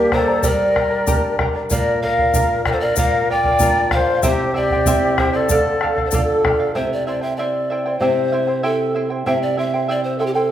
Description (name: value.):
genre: andean folk, Andean ensemble.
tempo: 95 BPM.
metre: 2/4.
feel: straight.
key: unclear.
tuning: A4 = 440 Hz.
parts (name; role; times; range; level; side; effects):
mellow hollow polished pan flute; melody; 0.0-10.5 s; G4 to G5; -20 LUFS; equal; none.
bright large quena; second line; 0.0-6.4 s; G4 to D5; -21 LUFS; left 4 dB; none.
charango; accompaniment; 0.0-10.5 s; E4 to Bb5; -23 LUFS; right 2 dB; none.
flamenco guitar; accompaniment; 0.0-10.5 s; Bb2 to Bb4; -24 LUFS; right 1 dB; none.
bombo; percussion; 0.1-6.6 s; none; -22 LUFS; equal; none.
egg shaker; percussion; 0.4-6.3 s; none; -28 LUFS; left 6 dB; none.
room: wet recital hall reverb, RT60 1.7 s.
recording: recorded in a church or concert hall.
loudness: -16 LUFS.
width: side -11 dB against mid.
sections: 0.0-6.7 A section; 6.7-10.5 B section.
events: none.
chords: 0.0 Gm; 1.7 Bb; 4.2 C; 5.5 Dm; 6.7 C.